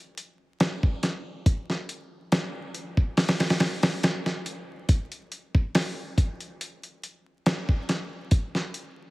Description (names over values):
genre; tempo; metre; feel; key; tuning
trip hop; 70 BPM; 4/4; swing 53% on 16ths; none; none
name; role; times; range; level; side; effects
dusty soul sampler-style drum kit; drums; 0.2-9.0 s; hi-hat, kick drum, snare drum; -24 LUFS; equal; studio ambience
room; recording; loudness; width
light reverb; heavily compressed radio sound, vinyl crackle; -24 LUFS; side -21 dB against mid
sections
0.0-9.1 A section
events
none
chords
none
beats
0.60 | 1.46 2.32 3.17 4.03 | 4.89 5.75 6.60 7.46 | 8.32